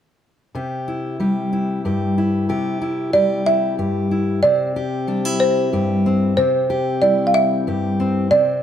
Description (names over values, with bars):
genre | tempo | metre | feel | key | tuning
folk | 62 BPM (dotted quarters) | 6/8 | straight | C major | A4 = 440 Hz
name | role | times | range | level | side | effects
fingerpicked steel-string acoustic guitar | accompaniment | 0.5-8.6 s | G2 to G4 | -19 LUFS | left 1 dB | none
folk marimba with medium mallets | melody | 3.1-8.6 s | C5 to F5 | -17 LUFS | right 2 dB | none
room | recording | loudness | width
moderate echo chamber reverb, RT60 1.6 s | none | -17 LUFS | side -9 dB against mid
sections
0.5-4.4 A section; 4.4-8.6 B section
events
none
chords
0.5 C